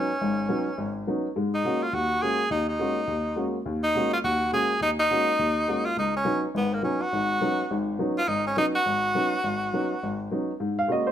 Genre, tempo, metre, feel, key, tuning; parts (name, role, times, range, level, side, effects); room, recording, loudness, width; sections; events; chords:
jazz; 208 BPM; 4/4; swing 60% on 8ths; A4 = 437 Hz
bright tenor saxophone; melody; 0.0-10.3 s; Bb3 to Ab4; -25 LUFS; equal; plate reverb
warm baby grand piano; accompaniment; 0.0-11.1 s; Ab1 to F5; -27 LUFS; equal
moderate studio reverb, RT60 0.8 s; -23 LUFS; side -10 dB against mid
0.0-10.6 A section
0.0 Db9sus4; 1.4 Ab9sus4; 6.0 Db9sus4; 10.6 Ab9sus4